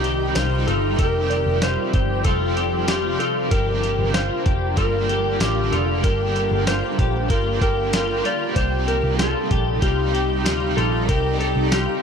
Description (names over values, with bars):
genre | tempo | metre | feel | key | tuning
dream pop | 95 BPM | 4/4 | straight | C dorian | A4 = 436 Hz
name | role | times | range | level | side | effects
electric slide guitar | melody | 0.0-12.0 s | G4 to D5 | -24 LUFS | equal | ping-pong delay
crunchy overdriven guitar | accompaniment | 0.0-12.0 s | G2 to G4 | -29 LUFS | right 5 dB | tremolo, analog chorus
shimmering ambient pad | sustained chords | 0.0-12.0 s | C3 to G4 | -27 LUFS | equal | chorus, built-in reverb
electric guitar at the edge of break-up | arpeggios | 0.0-12.0 s | F4 to G4 | -27 LUFS | left 7 dB | ensemble chorus, ping-pong delay
vintage muted picked electric bass | bass | 0.0-11.9 s | F1 to D2 | -24 LUFS | equal | none
dusty soul sampler-style drum kit | drums | 0.0-11.9 s | hi-hat, kick drum, snare drum, tambourine | -23 LUFS | equal | none
soft synth bell | texture | 0.0-10.5 s | D5 to C6 | -37 LUFS | left 1 dB | none
room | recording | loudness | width
light reverb, digital ambience | dark, warm production | -18 LUFS | side -6 dB against mid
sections
0.0-12.0 A section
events
none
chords
0.0 Cm; 1.0 Fsus2; 3.5 Gm7; 8.6 Cm